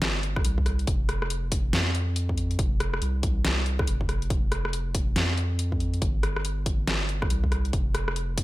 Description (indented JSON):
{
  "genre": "deep dubstep",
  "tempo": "140 BPM",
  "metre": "4/4",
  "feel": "swing 62% on 16ths, half-time",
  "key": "unclear",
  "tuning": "A4 = 440 Hz",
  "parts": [
    { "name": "soft dub sub bass", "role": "bass", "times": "0.0-8.4 s", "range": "F1 to F2", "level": "-27 LUFS", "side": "equal", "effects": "none" },
    { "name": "dubstep drum kit", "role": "drums", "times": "0.0-8.4 s", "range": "hi-hat, rim click, snare drum", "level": "-29 LUFS", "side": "equal", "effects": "none" },
    { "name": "electronic kick drum", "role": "drums", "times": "0.4-8.4 s", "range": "none", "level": "-27 LUFS", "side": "equal", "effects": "none" }
  ],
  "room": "little or no reverb",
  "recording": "none",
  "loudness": "-24 LUFS",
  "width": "side -17 dB against mid",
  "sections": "0.0-8.4 A section",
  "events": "none",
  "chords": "none"
}